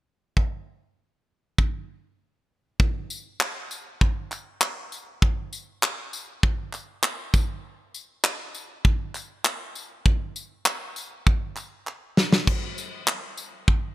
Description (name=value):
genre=pop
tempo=99 BPM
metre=4/4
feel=straight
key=none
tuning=none
part: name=modern studio drum kit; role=drums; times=0.4-13.8 s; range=crash cymbal, handclaps, kick drum, snare drum, tambourine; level=-22 LUFS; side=equal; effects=none
part: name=group handclap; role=percussion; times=3.4-13.2 s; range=none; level=-37 LUFS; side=right 2 dB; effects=none
room=small room ambience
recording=bright 1980s-style digital production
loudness=-23 LUFS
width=side -16 dB against mid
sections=0.4-2.8 A section; 2.8-13.9 B section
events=drum fill 11.9-12.5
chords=none